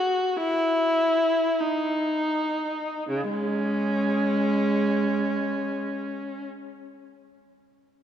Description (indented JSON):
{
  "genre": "classical, free, expressive piece for unaccompanied viola",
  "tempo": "free time",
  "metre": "none",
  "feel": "none",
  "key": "C# minor",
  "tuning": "A4 = 439 Hz",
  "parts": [
    { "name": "warm viola", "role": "solo", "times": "0.0-6.5 s", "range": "C#3 to F#4", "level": "-23 LUFS", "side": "equal", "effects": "none" }
  ],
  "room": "wet church reverb, RT60 3.1 s",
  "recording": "dark, warm production",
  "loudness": "-23 LUFS",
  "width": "side -9 dB against mid",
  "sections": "0.0-3.1 A section; 3.1-6.9 B section",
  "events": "slowing down 0.0-3.1",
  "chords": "none"
}